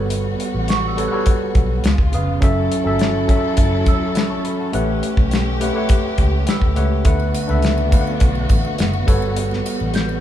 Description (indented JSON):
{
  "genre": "lush 1970s-style soul",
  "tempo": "104 BPM",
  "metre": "4/4",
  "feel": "straight",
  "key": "D major",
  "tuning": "A4 = 438 Hz",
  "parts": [
    { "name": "tine electric piano", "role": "accompaniment", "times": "0.0-10.2 s", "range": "C#3 to C#6", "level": "-21 LUFS", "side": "equal", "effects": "none" },
    { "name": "warm studio string section", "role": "sustained chords", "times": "0.0-10.2 s", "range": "C#3 to A4", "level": "-26 LUFS", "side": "left 1 dB", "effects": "none" },
    { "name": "vintage muted fingered electric bass", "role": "bass", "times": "0.0-10.2 s", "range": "E1 to D2", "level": "-21 LUFS", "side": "equal", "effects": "none" },
    { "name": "damped 70s drum kit", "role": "drums", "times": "0.1-10.1 s", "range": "hi-hat, kick drum, snare drum", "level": "-18 LUFS", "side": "equal", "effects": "none" },
    { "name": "worn celesta", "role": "texture", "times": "0.7-10.2 s", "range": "C#6 to G6", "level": "-29 LUFS", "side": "right 6 dB", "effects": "none" },
    { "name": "triangle", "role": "percussion", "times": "7.1-10.2 s", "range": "none", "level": "-37 LUFS", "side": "right 6 dB", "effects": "none" }
  ],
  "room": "moderate large studio reverb, RT60 1.1 s",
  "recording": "band playing live in one room",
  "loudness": "-15 LUFS",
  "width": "side -11 dB against mid",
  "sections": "0.0-10.2 A section",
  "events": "tine electric piano fill 6.2-7.1",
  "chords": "0.0 Gmaj9#11; 1.8 C#7; 2.4 F#m7; 4.7 A13; 7.1 D6; 9.1 Gmaj9#11"
}